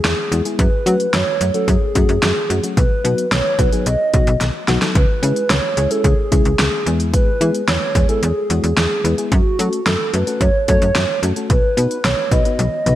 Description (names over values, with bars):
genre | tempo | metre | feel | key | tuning
synth-pop | 110 BPM | 4/4 | straight | unclear | A4 = 440 Hz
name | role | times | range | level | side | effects
hollow clarinet-like synth lead | melody | 0.0-13.0 s | F#4 to D#5 | -20 LUFS | right 2 dB | chorus
slap-like FM bass | bass | 0.0-13.0 s | B1 to F#3 | -18 LUFS | equal | none
pop drum kit | drums | 0.0-13.0 s | hi-hat, kick drum, snare drum, toms | -18 LUFS | equal | gated reverb
mellow FM electric piano | accompaniment | 0.3-13.0 s | F#3 to B4 | -24 LUFS | left 3 dB | chorus
room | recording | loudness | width
moderate lush hall reverb, RT60 2.5 s | bright 1980s-style digital production | -14 LUFS | side -13 dB against mid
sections
0.0-13.0 A section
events
drum fill 4.4-5.0, 12.6-13.0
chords
0.0 Eadd9; 0.6 F#madd9; 2.8 B; 5.0 C#m7; 6.9 E; 9.3 F#m; 11.5 B